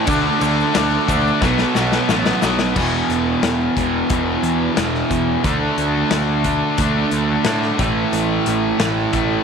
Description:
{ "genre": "classic rock", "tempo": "89 BPM", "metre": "4/4", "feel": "straight", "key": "unclear", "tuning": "A4 = 441 Hz", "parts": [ { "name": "distorted electric guitar", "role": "riff", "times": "0.0-9.4 s", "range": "E2 to D4", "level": "-20 LUFS", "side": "right 12 dB", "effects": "distortion" }, { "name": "overdriven electric guitar", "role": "riff", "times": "0.0-9.4 s", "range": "E2 to D4", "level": "-21 LUFS", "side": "left 11 dB", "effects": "none" }, { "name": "fuzz picked electric bass", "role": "bass", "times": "0.1-9.4 s", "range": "E1 to A2", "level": "-22 LUFS", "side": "equal", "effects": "overdrive" }, { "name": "big rock drum kit", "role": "drums", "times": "0.1-9.3 s", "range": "crash cymbal, hi-hat, kick drum, ride cymbal, snare drum", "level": "-23 LUFS", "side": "left 3 dB", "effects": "none" }, { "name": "egg shaker", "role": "percussion", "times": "0.1-2.6 s", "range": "none", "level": "-40 LUFS", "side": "right 12 dB", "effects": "none" } ], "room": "light reverb, small room ambience", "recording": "1960s-style stereo with parts hard left and right", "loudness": "-16 LUFS", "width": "side -6 dB against mid", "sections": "0.0-2.8 A section; 2.8-9.4 B section", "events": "drum fill 1.4-2.8", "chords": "0.1 D5; 1.4 B5; 2.8 E5; 5.4 D5; 7.8 A5" }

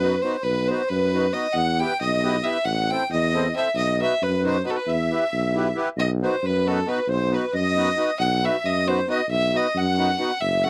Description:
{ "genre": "balkan folk, Balkan wedding band", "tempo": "271 BPM (eighths)", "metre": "5/8", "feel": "straight", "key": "unclear", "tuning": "A4 = 440 Hz", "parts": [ { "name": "clear fiddle", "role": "melody", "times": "0.0-10.7 s", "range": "A4 to G5", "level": "-26 LUFS", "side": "equal", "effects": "none" }, { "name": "accordion", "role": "second line", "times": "0.0-10.7 s", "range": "A4 to G5", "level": "-31 LUFS", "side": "equal", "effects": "light tremolo tuning" }, { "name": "accordion", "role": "accompaniment", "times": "0.0-10.7 s", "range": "A3 to C5", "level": "-28 LUFS", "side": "equal", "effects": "light tremolo tuning" }, { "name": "warm tuba", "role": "bass", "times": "0.0-10.7 s", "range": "F#1 to F#2", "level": "-27 LUFS", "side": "equal", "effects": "none" } ], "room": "light reverb", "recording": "dry, close 1970s-style studio recording", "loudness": "-23 LUFS", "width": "mono", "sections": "0.0-6.0 A section; 6.0-10.7 B section", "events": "none", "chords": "0.0 B; 1.5 Em; 2.7 Am; 3.8 B; 4.9 Em; 6.0 B" }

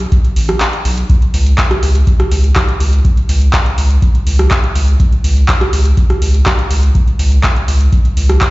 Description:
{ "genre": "acid house", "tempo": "123 BPM", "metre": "4/4", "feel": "straight", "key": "unclear", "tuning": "A4 = 440 Hz", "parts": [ { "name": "round analog bass", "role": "bass", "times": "0.0-8.4 s", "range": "A1 to C#2", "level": "-10 LUFS", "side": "equal", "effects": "sidechain pumping" }, { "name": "electro analog drum machine", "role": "drums", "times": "0.0-8.5 s", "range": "handclaps, hi-hat, rim click", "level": "-18 LUFS", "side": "equal", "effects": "overdrive" }, { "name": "electronic kick drum", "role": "drums", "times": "0.1-8.5 s", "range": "none", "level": "-12 LUFS", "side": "equal", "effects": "overdrive" } ], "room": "little or no reverb", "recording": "played on a big sound system in a bare room, large studio reverb, nothing above 7.7 kHz", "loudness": "-10 LUFS", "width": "side -20 dB against mid", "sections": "0.0-8.5 A section", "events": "break 0.6-1.1", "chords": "none" }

